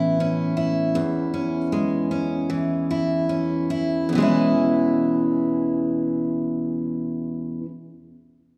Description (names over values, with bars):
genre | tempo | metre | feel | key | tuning
pop | 71-81 BPM | 4/4 | swing 60% on 16ths | E major | A4 = 440 Hz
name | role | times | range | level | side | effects
picked steel-string acoustic guitar | accompaniment | 0.0-7.7 s | E2 to E4 | -23 LUFS | equal | none
room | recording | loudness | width
wet recital hall reverb, RT60 1.7 s | recorded in a church or concert hall | -23 LUFS | mono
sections
0.0-4.1 A section; 4.1-7.5 B section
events
slowing down 0.0-4.1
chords
0.0 Aadd9; 1.0 E6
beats
0.21 | 0.95 1.72 2.50 3.30 | 4.13 4.98 5.82 6.67